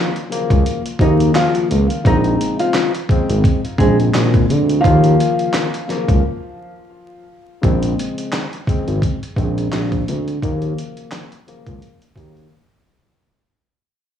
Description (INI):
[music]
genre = hip hop, boom-bap hip-hop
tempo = 86 BPM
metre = 4/4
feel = swing 55% on 16ths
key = unclear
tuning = A4 = 440 Hz
[part]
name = nylon-string guitar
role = melody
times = 0.0-5.7 s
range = F3 to Eb5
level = -20 LUFS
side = equal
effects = high-pass filter, low-pass filter, cassette tape, tape echo
[part]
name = tine electric piano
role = accompaniment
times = 0.0-12.5 s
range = Eb2 to C4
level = -23 LUFS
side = left 8 dB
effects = medium stereo tremolo, cassette tape, high-pass filter, low-pass filter
[part]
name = dusty soul sampler-style drum kit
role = drums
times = 0.2-12.5 s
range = handclaps, hi-hat, kick drum, snare drum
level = -19 LUFS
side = equal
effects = cassette tape
[part]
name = smooth gliding synth bass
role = bass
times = 0.5-12.5 s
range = Ab1 to Eb2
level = -16 LUFS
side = right 1 dB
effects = none
[sound]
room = digital ambience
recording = home recording on cassette, vinyl crackle, small room ambience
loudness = -14 LUFS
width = side -9 dB against mid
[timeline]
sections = 0.0-7.6 A section; 7.6-13.2 B section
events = break 6.2-7.6, 12.5-13.2; fade-out 7.6-13.2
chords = 0.0 Ebm9; 2.1 Bbm9; 4.8 Ebm9; 7.6 Bbm9; 10.4 Ebm9